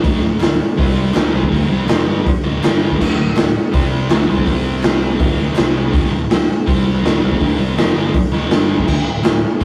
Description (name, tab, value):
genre	garage rock duo or trio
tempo	163 BPM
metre	4/4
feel	straight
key	unclear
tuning	A4 = 438 Hz
part	thick fuzz guitar	riff	0.0-9.6 s	D2 to C4	-21 LUFS	equal	distortion
part	picked electric bass	bass	0.0-9.6 s	D1 to C2	-27 LUFS	equal	tube saturation
part	raw garage drum kit	drums	0.0-9.6 s	crash cymbal, hi-hat, kick drum, snare drum	-18 LUFS	equal	none
part	group handclap	percussion	0.4-5.6, 9.2-9.3 s	none	-34 LUFS	equal	none
room	light reverb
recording	rough rehearsal-room recording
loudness	-16 LUFS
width	mono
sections	0.0-5.9 A section; 5.9-9.6 A section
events	none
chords	0.0 D5; 0.8 C5; 1.1 D5; 2.6 G5; 3.0 D5; 3.7 C5; 4.1 D5; 4.5 C5; 5.2 D5; 5.6 C5; 5.9 D5; 6.7 C5; 7.0 D5; 8.5 G5; 8.9 D5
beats	| 0.04 0.41 0.78 1.15 | 1.51 1.88 2.25 2.62 | 2.98 3.35 3.72 4.09 | 4.46 4.82 5.19 5.56 | 5.93 6.29 6.66 7.03 | 7.40 7.77 8.14 8.50 | 8.87 9.24 9.61